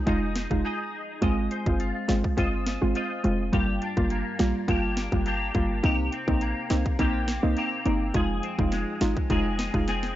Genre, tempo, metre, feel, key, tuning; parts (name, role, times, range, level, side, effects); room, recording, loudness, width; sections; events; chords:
dancehall; 104 BPM; 4/4; straight; F dorian; A4 = 440 Hz
soft round pluck; accompaniment; 0.0-9.9 s; G3 to F4; -28 LUFS; right 1 dB; chorus
clean electric guitar; arpeggios; 0.0-10.2 s; F2 to Eb5; -31 LUFS; left 2 dB; ensemble chorus
short 808-style bass; bass; 0.1-10.1 s; F1 to C2; -28 LUFS; equal
island pop drum kit; drums; 0.1-10.2 s; hi-hat, kick drum, rim click, snare drum; -29 LUFS; equal; overdrive
digital ambience; dry, gritty hardware recording, transformer saturation, nothing above 7.6 kHz; -24 LUFS; side -14 dB against mid
0.0-10.2 A section
break 0.6-1.2; drum fill 9.9
0.0 Fm7; 1.2 Ab6; 3.5 Gm7; 5.8 Cm7; 8.1 Fm7